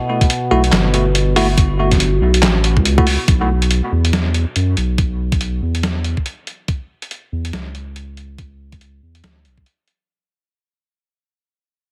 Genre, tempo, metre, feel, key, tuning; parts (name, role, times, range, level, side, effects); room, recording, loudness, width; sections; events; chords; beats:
deep dubstep; 141 BPM; 4/4; swing 59% on 16ths, half-time; A4 = 440 Hz
overtone-sweeping drone; sustained chords; 0.0-3.3 s; B2; -26 LUFS; equal; chorus, built-in reverb
electronic kick drum; drums; 0.2-9.6 s; -18 LUFS; equal
trip hop sampler-style drum kit; drums; 0.2-10.0 s; handclaps, hi-hat, snare drum; -22 LUFS; equal
bell-like tine electric piano; stabs; 0.5-3.0 s; A3 to F#4; -22 LUFS; equal; dub echo
saturated sub bass; bass; 0.5-9.6 s; G1 to F#2; -19 LUFS; equal; tube saturation
light reverb, digital ambience; heavily compressed radio sound, multiband compression; -16 LUFS; mono
0.0-3.3 A section; 3.3-10.1 B section
drop 0.0-3.3; fade-out 3.3-10.1; filter sweep on sub bass 3.3-10.1
0.0 F#m (rootless); 3.3 N.C.
0.30 0.73 1.15 | 1.58 2.00 2.43 2.85 | 3.28 3.71 4.13 4.56 | 4.98 5.41 5.83 6.26 | 6.68 7.11 7.53 7.96 | 8.38 8.81 9.24 9.66